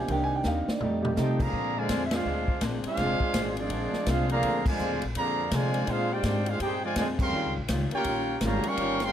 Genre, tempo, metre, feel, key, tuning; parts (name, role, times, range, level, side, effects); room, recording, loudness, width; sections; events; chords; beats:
jazz, big band swing; 166 BPM; 4/4; swing 63% on 8ths; Bb major; A4 = 439 Hz
warm grand piano; accompaniment; 0.0-1.4 s; Eb3 to Ab5; -29 LUFS; right 2 dB
mellow trombone section; sustained chords; 0.0-1.1 s; Eb3 to G4; -36 LUFS; equal
upright bass; bass; 0.0-9.1 s; F1 to C3; -32 LUFS; left 1 dB
archtop guitar, miked and amplified; accompaniment; 0.1-9.0 s; Bb2 to G4; -36 LUFS; left 4 dB
swinging big-band drum kit; drums; 0.1-9.1 s; crash cymbal, hi-hat, kick drum, ride cymbal, snare drum, toms; -32 LUFS; equal
clear trumpet section; melody; 1.2-9.1 s; C4 to Db6; -30 LUFS; equal
clear trombone section; second line; 1.2-9.1 s; Db3 to G4; -31 LUFS; right 2 dB
moderate large studio reverb, RT60 0.9 s; -25 LUFS; side -10 dB against mid
0.0-1.5 A section; 1.5-9.1 B section
grand piano solo 0.0-1.5; drum fill 0.4-1.2; band accent 2.1, 4.6, 7.1
0.1 Cm7; 0.8 F9; 1.5 Bb9
| 0.08 0.45 0.81 1.17 | 1.53 1.90 2.26 2.62 | 2.98 3.34 3.71 4.07 | 4.43 4.79 5.15 5.52 | 5.88 6.24 6.60 6.97 | 7.33 7.69 8.05 8.41 | 8.78